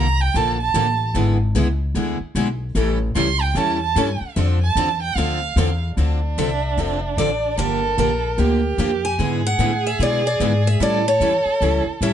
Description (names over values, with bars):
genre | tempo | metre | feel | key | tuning
acoustic string swing (jazz manouche) | 149 BPM | 4/4 | swing 63% on 8ths | D minor | A4 = 443 Hz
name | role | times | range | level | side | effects
warm violin | second line | 0.0-12.1 s | D4 to C6 | -24 LUFS | right 7 dB | none
picked steel-string acoustic guitar | accompaniment | 0.0-12.1 s | D3 to A4 | -25 LUFS | left 6 dB | none
picked steel-string acoustic guitar | accompaniment | 0.0-12.1 s | D3 to A4 | -27 LUFS | right 8 dB | none
upright bass | bass | 0.0-12.1 s | F1 to B2 | -21 LUFS | left 1 dB | none
picked steel-string acoustic guitar | melody | 6.4-12.1 s | Bb4 to G#5 | -22 LUFS | left 1 dB | none
room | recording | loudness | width
light reverb | nothing above 10.9 kHz | -17 LUFS | side -9 dB against mid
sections
0.0-6.0 A section; 6.0-12.1 B section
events
violin solo 0.0-6.0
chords
0.0 Bbmaj7; 1.2 E7/G#; 2.8 A7; 4.4 Dm7; 7.6 Gm7; 9.2 E7/G#; 10.8 A7